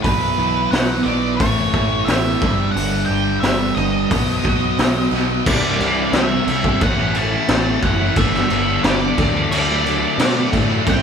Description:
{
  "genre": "quiet-loud alternative rock",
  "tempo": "89 BPM",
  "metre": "4/4",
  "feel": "straight",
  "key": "unclear",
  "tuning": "A4 = 440 Hz",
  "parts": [
    { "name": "octave-fuzz lead guitar", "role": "melody", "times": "0.0-11.0 s", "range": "B4 to A5", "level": "-24 LUFS", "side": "right 2 dB", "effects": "distortion" },
    { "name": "picked plugged-in swing-style acoustic guitar", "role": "arpeggios", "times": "0.0-5.5 s", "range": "G2 to F#4", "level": "-28 LUFS", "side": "right 8 dB", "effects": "none" },
    { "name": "distorted electric guitar", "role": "riff", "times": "0.0-11.0 s", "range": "G2 to E4", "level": "-23 LUFS", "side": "right 7 dB", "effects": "distortion" },
    { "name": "sludgy distorted guitar", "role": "riff", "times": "0.0-11.0 s", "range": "G2 to E4", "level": "-23 LUFS", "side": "left 9 dB", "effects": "overdrive" },
    { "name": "growling picked electric bass", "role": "bass", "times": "0.0-11.0 s", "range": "F#1 to B2", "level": "-25 LUFS", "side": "equal", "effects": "overdrive" },
    { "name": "raw garage drum kit", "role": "drums", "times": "0.0-11.0 s", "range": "crash cymbal, hi-hat, kick drum, snare drum", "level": "-19 LUFS", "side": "equal", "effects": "none" }
  ],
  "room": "light reverb",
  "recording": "band playing live in one room",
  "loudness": "-15 LUFS",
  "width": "side -7 dB against mid",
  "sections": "0.0-5.5 A section; 5.5-11.0 B section",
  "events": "none",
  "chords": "0.0 Bsus4; 1.4 Aadd9; 2.4 G; 4.1 B; 5.5 C; 6.8 A6; 8.2 G; 9.2 D",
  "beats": "| 0.04 0.72 1.40 2.08 | 2.75 3.43 4.11 4.79 | 5.46 6.14 6.82 7.49 | 8.17 8.84 9.52 10.20 | 10.87"
}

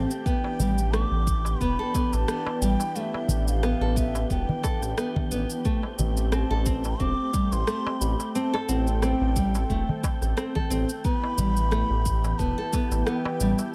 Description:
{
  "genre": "organic downtempo",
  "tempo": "89 BPM",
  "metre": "4/4",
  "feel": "swing 55% on 16ths",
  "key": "A minor",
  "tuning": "A4 = 439 Hz",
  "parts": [
    { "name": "warm analog pad", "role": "sustained chords", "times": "0.0-13.7 s", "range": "E3 to A4", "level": "-37 LUFS", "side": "equal", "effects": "chorus, tremolo, vintage 12-bit sampler grit, sidechain pumping" },
    { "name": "nylon-string guitar", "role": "arpeggios", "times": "0.0-13.6 s", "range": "G3 to A4", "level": "-32 LUFS", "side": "equal", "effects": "delay" },
    { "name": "smooth synth bass", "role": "bass", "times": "0.0-13.5 s", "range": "E1 to A1", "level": "-28 LUFS", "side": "equal", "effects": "none" },
    { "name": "wind-like tuned noise texture", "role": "texture", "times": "0.0-13.7 s", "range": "G5", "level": "-46 LUFS", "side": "equal", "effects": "built-in reverb" },
    { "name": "electronic cabasa and rim click", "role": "drums", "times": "0.1-13.7 s", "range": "none", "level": "-35 LUFS", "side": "equal", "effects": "studio reverb" },
    { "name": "mellow bansuri", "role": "melody", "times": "0.2-13.7 s", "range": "E5 to D6", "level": "-35 LUFS", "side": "equal", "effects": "vintage 12-bit sampler grit, tape echo" },
    { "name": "electronic kick drum", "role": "drums", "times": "0.3-12.9 s", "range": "none", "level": "-31 LUFS", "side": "equal", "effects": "studio reverb" },
    { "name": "darbuka", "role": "percussion", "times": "0.4-13.7 s", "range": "none", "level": "-35 LUFS", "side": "equal", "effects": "none" }
  ],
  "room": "light reverb, small room ambience",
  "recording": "none",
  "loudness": "-26 LUFS",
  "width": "mono",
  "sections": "0.0-13.7 A section",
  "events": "none",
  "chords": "0.3 Em7; 5.7 Am7; 11.0 Em",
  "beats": "| 0.26 0.93 1.61 2.28 | 2.96 3.63 4.30 4.98 | 5.65 6.33 7.00 7.67 | 8.35 9.02 9.70 10.37 | 11.04 11.72 12.39 13.07 | 13.74"
}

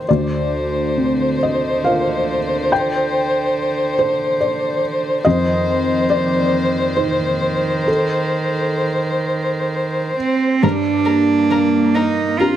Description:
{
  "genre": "neoclassical piano and strings",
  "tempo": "64-71 BPM",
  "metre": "3/4",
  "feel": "rubato",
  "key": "unclear",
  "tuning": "A4 = 440 Hz",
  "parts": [
    { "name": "felt-muted upright piano", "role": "accompaniment", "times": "0.0-12.6 s", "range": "D2 to G5", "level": "-19 LUFS", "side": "left 1 dB", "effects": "none" },
    { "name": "dark violin", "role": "melody", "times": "0.1-12.5 s", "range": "Bb4 to C5", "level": "-21 LUFS", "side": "left 1 dB", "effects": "analog delay" },
    { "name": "warm cello", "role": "second line", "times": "0.1-12.6 s", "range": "D3 to F4", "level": "-21 LUFS", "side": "right 4 dB", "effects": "none" },
    { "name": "warm viola", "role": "accompaniment", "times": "10.6-12.6 s", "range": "G3 to C4", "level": "-23 LUFS", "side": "equal", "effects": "none" }
  ],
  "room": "wet small room reverb, RT60 0.5 s",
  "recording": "none",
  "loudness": "-15 LUFS",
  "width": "side -11 dB against mid",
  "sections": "0.0-10.6 A section; 10.6-12.6 A section",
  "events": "none",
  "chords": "0.1 Bbadd9/D; 5.2 F7; 10.6 Gm",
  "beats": "| 0.08 0.96 1.85 | 2.71 3.56 4.40 | 5.25 6.09 6.96 | 7.88 8.79 9.72 | 10.63 11.51 12.39"
}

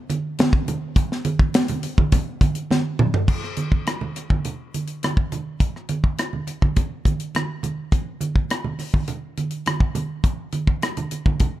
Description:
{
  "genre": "soul",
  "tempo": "104 BPM",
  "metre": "4/4",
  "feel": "straight",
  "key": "none",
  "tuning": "none",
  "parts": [
    { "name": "tight funk drum kit", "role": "drums", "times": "0.1-11.5 s", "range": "crash cymbal, hi-hat, kick drum, rim click, snare drum, toms", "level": "-20 LUFS", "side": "equal", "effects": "none" },
    { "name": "congas", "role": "percussion", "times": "0.1-11.5 s", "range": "none", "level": "-27 LUFS", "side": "right 4 dB", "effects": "none" }
  ],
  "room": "little or no reverb",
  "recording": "dark, warm production",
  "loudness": "-20 LUFS",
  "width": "side -14 dB against mid",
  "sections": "0.0-3.3 A section; 3.3-11.6 B section",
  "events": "drum fill 2.7-3.3",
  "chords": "none",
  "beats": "0.39 | 0.97 1.54 2.12 2.70 | 3.28 3.86 4.44 5.02 | 5.60 6.18 6.76 7.34 | 7.92 8.50 9.08 9.66 | 10.24 10.82 11.40"
}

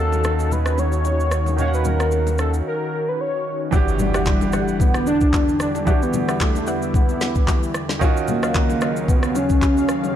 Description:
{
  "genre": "amapiano",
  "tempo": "112 BPM",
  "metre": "4/4",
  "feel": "swing 55% on 16ths",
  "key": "unclear",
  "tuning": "A4 = 441 Hz",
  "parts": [
    { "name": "warm velvety synth lead", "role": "melody", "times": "0.0-10.2 s", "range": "G3 to C#5", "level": "-22 LUFS", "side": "equal", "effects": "chorus, low-pass filter, digital delay" },
    { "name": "clear concert grand piano", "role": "accompaniment", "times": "0.0-10.2 s", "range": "D#3 to F#5", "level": "-27 LUFS", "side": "right 7 dB", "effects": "low-pass filter" },
    { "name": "warm analog pad", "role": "sustained chords", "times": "0.0-10.2 s", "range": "D#2 to F#5", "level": "-28 LUFS", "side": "left 2 dB", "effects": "chorus, sidechain pumping, low-pass filter" },
    { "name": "saturated sub bass", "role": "bass", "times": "0.0-2.6 s", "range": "D#2", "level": "-20 LUFS", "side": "equal", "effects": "none" },
    { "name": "afro-pop drum kit", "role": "drums", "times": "0.1-10.2 s", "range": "handclaps, kick drum, rim click, shaker, snare drum", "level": "-21 LUFS", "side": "equal", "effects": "none" },
    { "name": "bongos and congas", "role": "percussion", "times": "0.1-10.1 s", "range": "none", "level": "-30 LUFS", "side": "left 9 dB", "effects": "none" },
    { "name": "soft round pluck", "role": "stabs", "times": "3.7-9.0 s", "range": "F#4 to F#5", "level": "-30 LUFS", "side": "left 2 dB", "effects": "chorus, digital delay" },
    { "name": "impact", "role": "sound effects", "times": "3.7-5.9 s", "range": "none", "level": "-27 LUFS", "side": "equal", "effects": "none" }
  ],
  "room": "light reverb",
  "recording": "dark, warm production",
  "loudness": "-17 LUFS",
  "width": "side -10 dB against mid",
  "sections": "0.0-3.7 A section; 3.7-10.2 B section",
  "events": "filter sweep 0.0-3.7; break 2.7-3.7; impact 3.7-5.9",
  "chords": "0.0 D#m9; 3.7 Em9; 8.0 D#m9",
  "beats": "0.51 1.05 | 1.58 2.12 2.66 3.19 | 3.73 4.26 4.80 5.33 | 5.87 6.41 6.94 7.48 | 8.01 8.55 9.08 9.62 | 10.16"
}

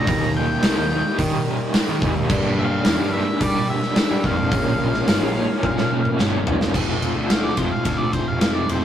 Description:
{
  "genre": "quiet-loud alternative rock",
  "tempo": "108 BPM",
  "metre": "4/4",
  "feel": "straight",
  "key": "F major",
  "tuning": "A4 = 439 Hz",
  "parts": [
    { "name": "octave-fuzz lead guitar", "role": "melody", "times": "0.0-8.8 s", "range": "C5 to Bb5", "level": "-26 LUFS", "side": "equal", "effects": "distortion" },
    { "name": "electric guitar through a small old amp", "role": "arpeggios", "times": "0.0-8.8 s", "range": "Bb2 to Bb4", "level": "-30 LUFS", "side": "left 4 dB", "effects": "none" },
    { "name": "raw garage guitar", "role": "riff", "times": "0.0-8.8 s", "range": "G2 to F4", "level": "-25 LUFS", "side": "equal", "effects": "overdrive, tremolo" },
    { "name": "fuzz picked electric bass", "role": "bass", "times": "0.0-8.8 s", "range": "F1 to G3", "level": "-25 LUFS", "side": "equal", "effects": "overdrive" },
    { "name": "big rock drum kit", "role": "drums", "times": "0.1-8.8 s", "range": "crash cymbal, hi-hat, kick drum, ride cymbal, snare drum, toms", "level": "-21 LUFS", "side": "right 1 dB", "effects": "none" }
  ],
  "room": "light reverb",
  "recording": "rough rehearsal-room recording",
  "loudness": "-18 LUFS",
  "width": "side -10 dB against mid",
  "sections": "0.0-6.7 A section; 6.7-8.8 B section",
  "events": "drum fill 5.6-6.7; lead electric guitar solo 6.7-8.8",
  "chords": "0.1 Eb; 2.3 Gm; 4.5 Bbm; 6.7 F",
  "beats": "| 0.07 0.62 1.18 1.74 | 2.29 2.85 3.40 3.96 | 4.51 5.07 5.63 6.18 | 6.74 7.30 7.86 8.41"
}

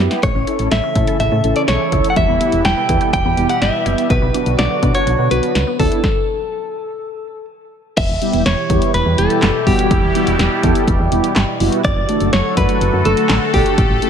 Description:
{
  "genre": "synth-pop",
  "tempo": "124 BPM",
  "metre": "4/4",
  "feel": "straight",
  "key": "E dorian",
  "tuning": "A4 = 439 Hz",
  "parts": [
    { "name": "mellow synth brass", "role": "accompaniment", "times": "0.0-14.1 s", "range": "G3 to B4", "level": "-21 LUFS", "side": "equal", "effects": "chorus" },
    { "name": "solid FM bass", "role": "bass", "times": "0.0-14.0 s", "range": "E1 to B2", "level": "-18 LUFS", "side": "equal", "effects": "none" },
    { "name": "punchy analog drum machine", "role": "drums", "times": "0.1-14.1 s", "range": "crash cymbal, handclaps, hi-hat, kick drum, snare drum", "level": "-19 LUFS", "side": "equal", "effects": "none" },
    { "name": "direct-recorded clean electric guitar", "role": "melody", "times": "0.2-14.1 s", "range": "G4 to G5", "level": "-19 LUFS", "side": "equal", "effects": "tape echo" },
    { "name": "sweeping resonant pad", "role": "sustained chords", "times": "0.7-14.1 s", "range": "B2 to A4", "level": "-22 LUFS", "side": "right 1 dB", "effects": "chorus" },
    { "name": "resonant blip pluck", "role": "arpeggios", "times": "0.2-5.9 s", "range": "F#3 to A4", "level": "-26 LUFS", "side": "left 2 dB", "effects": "phaser, tape echo" }
  ],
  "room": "moderate plate reverb, RT60 2.0 s",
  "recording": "dreamy mix soaked in reverb",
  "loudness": "-13 LUFS",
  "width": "side -8 dB against mid",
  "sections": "0.0-8.0 A section; 8.0-14.1 B section",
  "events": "drum fill 0.0; stop 6.0-8.0",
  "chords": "0.2 A; 2.2 Em; 4.1 Bm; 6.0 N.C.; 8.0 Em; 11.8 D/F#",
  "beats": "| 0.23 0.71 1.20 1.68 | 2.17 2.65 3.13 3.62 | 4.10 4.59 5.07 5.55 | 6.04 6.52 7.00 7.49 | 7.97 8.46 8.94 9.43 | 9.91 10.39 10.88 11.36 | 11.84 12.33 12.81 13.30 | 13.78"
}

